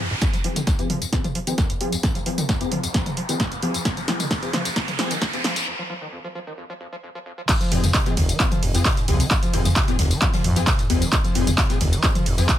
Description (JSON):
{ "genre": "driving peak-time techno", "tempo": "132 BPM", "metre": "4/4", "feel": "straight", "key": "F minor", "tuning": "A4 = 437 Hz", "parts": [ { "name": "overdriven acid bass", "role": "riff", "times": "0.0-12.6 s", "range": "Eb2 to F3", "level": "-27 LUFS", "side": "equal", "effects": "distortion, wide subtle chorus, sidechain pumping" }, { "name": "riser", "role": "sound effects", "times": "0.0-5.7 s", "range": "none", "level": "-30 LUFS", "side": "right 1 dB", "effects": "none" }, { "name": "electronic kick drum", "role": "drums", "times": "0.2-12.6 s", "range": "none", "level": "-23 LUFS", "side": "equal", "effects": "none" }, { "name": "punchy analog drum machine", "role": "drums", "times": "0.2-12.6 s", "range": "crash cymbal, handclaps, hi-hat, ride cymbal, snare drum, tambourine, toms", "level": "-24 LUFS", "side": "equal", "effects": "sidechain pumping on toms, sidechain pumping on hats, sidechain pumping on perc, sidechain pumping on cymbals" }, { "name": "rave stab", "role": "stabs", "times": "0.4-12.5 s", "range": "F3 to Ab4", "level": "-28 LUFS", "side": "left 3 dB", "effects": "chorus, built-in reverb, vintage 12-bit sampler grit, sidechain pumping, dub echo" }, { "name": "swinging big-band drum kit", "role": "drums", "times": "7.5-12.6 s", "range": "hi-hat, snare drum", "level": "-36 LUFS", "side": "left 3 dB", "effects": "none" }, { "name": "growling FM bass", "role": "bass", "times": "7.7-12.4 s", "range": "F1 to F2", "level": "-23 LUFS", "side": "equal", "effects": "sidechain pumping" } ], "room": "light reverb", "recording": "high-pass filter", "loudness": "-19 LUFS", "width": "side -12 dB against mid", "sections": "0.2-7.5 A section; 7.5-12.6 B section", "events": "riser 0.0, 0.2-5.7; build-up 0.2-7.5; drum fill 0.2-5.7; filter sweep on acid bass 0.2-7.5; filter sweep on synth stab 0.2-7.5; filter sweep 0.2-7.5; break 5.7-7.5; drop 7.5-12.6", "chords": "0.2 Fm" }